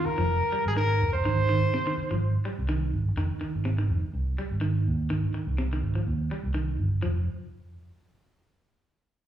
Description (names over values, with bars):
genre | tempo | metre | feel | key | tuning
afrobeat | 125 BPM | 4/4 | swing 56% on 16ths | F minor | A4 = 439 Hz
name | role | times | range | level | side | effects
mellow trumpet | melody | 0.0-2.6 s | Ab4 to C5 | -27 LUFS | equal | none
electric guitar at the edge of break-up | arpeggios | 0.0-7.2 s | C3 to G3 | -32 LUFS | equal | tremolo
fingered electric bass | bass | 0.1-7.3 s | F1 to Eb2 | -27 LUFS | right 1 dB | none
room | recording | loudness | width
wet large studio reverb, RT60 1.3 s | band playing live in one room | -25 LUFS | side -11 dB against mid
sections
0.0-3.2 A section; 3.2-7.0 B section; 7.0-9.0 C section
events
none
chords
0.0 Fm; 1.2 Ab; 3.2 Fm7; 5.1 Abmaj7; 7.0 N.C.